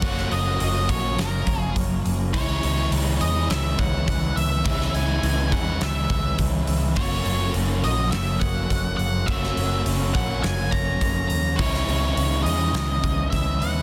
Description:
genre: rock, shoegaze and dream pop.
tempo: 104 BPM.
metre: 4/4.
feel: straight.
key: F# mixolydian.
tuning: A4 = 439 Hz.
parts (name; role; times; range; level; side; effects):
octave-fuzz lead guitar; melody; 0.0-13.8 s; A#4 to A#5; -30 LUFS; equal; distortion, tape echo.
mellow electric guitar; arpeggios; 0.0-13.8 s; E3 to G#4; -38 LUFS; equal; none.
overdriven electric guitar; riff; 0.0-13.8 s; F#2 to F#4; -31 LUFS; equal; reverse reverb.
overdriven semi-hollow guitar; riff; 0.0-13.8 s; F#2 to F#4; -31 LUFS; equal; ensemble chorus.
vintage muted fingered electric bass; bass; 0.0-13.8 s; F#1 to E2; -27 LUFS; equal; none.
big rock drum kit; drums; 0.0-13.8 s; hi-hat, kick drum, snare drum; -30 LUFS; equal; soft clipping on kick.
room: little or no reverb.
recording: dense, heavily limited modern master.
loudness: -23 LUFS.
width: mono.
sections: 0.0-13.8 A section.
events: none.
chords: 0.0 F#; 2.3 C#m7; 7.0 F#; 11.6 C#m7.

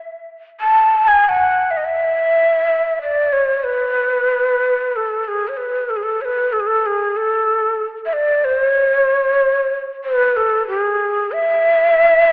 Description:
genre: turkish.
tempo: 94 BPM.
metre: 4/4.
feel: straight.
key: E makam rast, E makam hicaz from 3.6 s.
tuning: A4 = 440 Hz.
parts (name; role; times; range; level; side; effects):
breathy ney; solo; 0.6-12.3 s; G#4-20c to A5; -14 LUFS; equal; none.
room: moderate concert hall reverb, RT60 2.0 s.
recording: telephone sound.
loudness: -14 LUFS.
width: side -27 dB against mid.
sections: 0.0-3.6 A section; 3.6-12.3 B section.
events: none.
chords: none.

